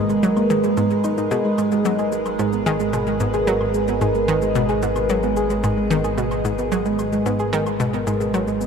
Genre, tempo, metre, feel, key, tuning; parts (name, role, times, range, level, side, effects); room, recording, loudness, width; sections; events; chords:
ambient, sequencer-driven space music; 111 BPM; 4/4; straight; G# minor; A4 = 440 Hz
evolving wavetable pad; sustained chords; 0.0-8.7 s; G#3 to D#5; -21 LUFS; right 2 dB; chorus, built-in reverb, phaser
soft round pluck; arpeggios; 0.0-8.7 s; G#3 to G#4; -24 LUFS; right 1 dB; chorus, auto-pan, analog delay
analog pluck; riff; 0.0-8.6 s; G#2 to F#3; -24 LUFS; left 1 dB; chorus, analog delay
analog drone; bass; 0.0-8.7 s; G#1; -30 LUFS; equal; chorus
cabasa and woodblock; percussion; 0.1-8.7 s; -40 LUFS; left 1 dB; analog delay
wet huge ambient reverb, RT60 8.5 s; dark, warm production; -18 LUFS; side -6 dB against mid
0.0-8.7 A section
0.0 G#madd9